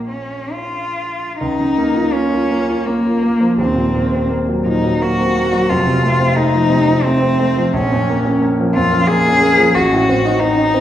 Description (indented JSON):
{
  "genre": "classical, romantic duo for cello and grand piano",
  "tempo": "65-92 BPM",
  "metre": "3/4",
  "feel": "rubato",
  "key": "Bb minor",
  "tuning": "A4 = 440 Hz",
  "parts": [
    { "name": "rich cello", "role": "melody", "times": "0.0-10.8 s", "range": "Bb3 to Ab4", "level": "-16 LUFS", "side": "left 1 dB", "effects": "none" },
    { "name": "warm grand piano", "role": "accompaniment", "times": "0.0-10.8 s", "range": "Eb1 to Db5", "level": "-16 LUFS", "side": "equal", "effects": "none" }
  ],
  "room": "wet recital hall reverb, RT60 1.7 s",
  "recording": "heard from further back in the room",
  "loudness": "-13 LUFS",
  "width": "side -11 dB against mid",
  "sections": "0.0-1.4 A section; 1.4-10.8 B section",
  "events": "none",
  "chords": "0.0 Bbm; 1.4 Bbm/Db; 3.6 Cm7b5/Eb; 5.7 F; 7.7 Bbm; 9.7 Adim7",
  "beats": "0.53 | 1.40 2.13 2.87 | 3.58 4.30 5.01 | 5.70 6.37 7.04 | 7.73 8.40 9.08 | 9.74 10.39"
}